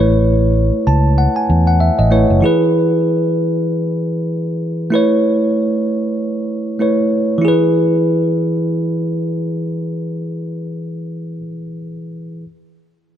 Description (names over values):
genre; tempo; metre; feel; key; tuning
afrobeats; 96 BPM; 4/4; swing 58% on 16ths; E major; A4 = 440 Hz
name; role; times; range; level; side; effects
bell-like tine electric piano; accompaniment; 0.0-12.5 s; E3 to A5; -15 LUFS; equal; none
fingered electric bass; bass; 0.0-2.4 s; F#1 to E2; -13 LUFS; equal; none
room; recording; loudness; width
light reverb, digital ambience; none; -14 LUFS; side -10 dB against mid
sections
0.0-7.4 A section; 7.4-9.9 B section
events
tine electric piano fill 0.6-2.4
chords
0.0 Aadd9; 2.4 E; 4.9 Aadd9; 7.4 E